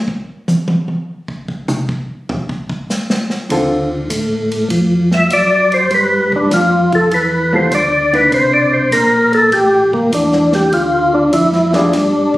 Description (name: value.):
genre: soul jazz organ trio.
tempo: 100 BPM.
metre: 4/4.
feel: swing 69% on 8ths.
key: unclear.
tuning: A4 = 440 Hz.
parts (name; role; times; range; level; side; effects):
warm soul drum kit; drums; 0.1-12.4 s; hi-hat, kick drum, ride cymbal, snare drum, toms; -22 LUFS; equal; none.
hollow-body jazz guitar; accompaniment; 3.5-3.9, 7.5-11.9 s; D3 to A4; -17 LUFS; equal; none.
tonewheel organ; bass; 3.5-12.4 s; A1 to A2; -17 LUFS; equal; slow rotary speaker.
percussive tonewheel organ; melody; 5.1-12.4 s; Bb3 to E5; -12 LUFS; equal; slow rotary speaker, overdrive, chorus vibrato.
room: wet club ambience, RT60 0.5 s.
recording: recorded on a phone in the room, studio reverb.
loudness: -11 LUFS.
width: side -16 dB against mid.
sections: 0.0-12.4 A section.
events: tonewheel organ solo 0.0-12.4; drum solo 0.0-3.5.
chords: 0.0 N.C.; 3.5 Dm7; 5.9 G7; 8.3 C9; 10.7 Dm.